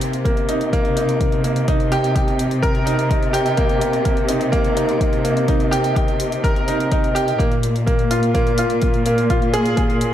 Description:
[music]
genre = piano and strings electronica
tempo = 126 BPM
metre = 4/4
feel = straight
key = C minor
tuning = A4 = 440 Hz
[part]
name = dark symphonic cello section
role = bass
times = 0.0-10.1 s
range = Bb2 to C3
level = -22 LUFS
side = equal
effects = tube saturation, sidechain pumping
[part]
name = electronic hi-hat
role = drums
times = 0.0-10.1 s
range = none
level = -32 LUFS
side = left 1 dB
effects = studio reverb
[part]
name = bright upright piano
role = riff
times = 0.2-10.1 s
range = Bb3 to Bb4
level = -19 LUFS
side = equal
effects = tape echo
[part]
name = electronic kick drum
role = drums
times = 0.3-9.9 s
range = none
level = -20 LUFS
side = equal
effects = studio reverb
[sound]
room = light reverb, studio ambience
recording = none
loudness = -16 LUFS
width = side -11 dB against mid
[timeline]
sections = 0.0-10.1 A section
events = none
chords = 0.0 Cm7; 7.4 Bb7(no3)

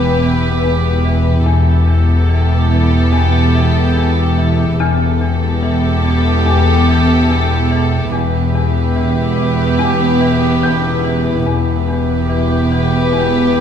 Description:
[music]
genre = cinematic, suspense film score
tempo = 72 BPM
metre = 4/4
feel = straight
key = E phrygian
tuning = A4 = 440 Hz
[part]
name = clear studio violin section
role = melody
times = 0.0-13.6 s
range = A4 to B4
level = -22 LUFS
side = left 3 dB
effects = none
[part]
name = warm symphonic violin section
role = second line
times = 0.0-13.6 s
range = G4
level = -22 LUFS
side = right 1 dB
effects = none
[part]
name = dark symphonic viola section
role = accompaniment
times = 0.0-13.6 s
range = B3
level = -19 LUFS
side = right 1 dB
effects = none
[part]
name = marimba with hard mallets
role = riff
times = 0.0-13.6 s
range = E2 to E3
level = -17 LUFS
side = left 5 dB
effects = none
[part]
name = warm symphonic cello section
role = bass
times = 0.0-13.6 s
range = E2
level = -20 LUFS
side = right 3 dB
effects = none
[part]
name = warm symphonic double bass section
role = bass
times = 0.0-13.6 s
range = E1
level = -20 LUFS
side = right 4 dB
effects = none
[part]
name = organ-like drone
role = drone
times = 0.0-13.6 s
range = E2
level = -21 LUFS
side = equal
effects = ensemble chorus, built-in reverb, phaser
[part]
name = warm baby grand piano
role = texture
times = 0.0-13.6 s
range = G5 to G6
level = -27 LUFS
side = left 1 dB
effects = none
[part]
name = warm studio violin section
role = texture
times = 0.0-1.0 s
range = B5 to E6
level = -38 LUFS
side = left 2 dB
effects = none
[sound]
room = wet recital hall reverb, RT60 1.4 s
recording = heard from further back in the room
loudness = -12 LUFS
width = side -8 dB against mid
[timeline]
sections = 0.0-13.6 A section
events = none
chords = 0.0 Em

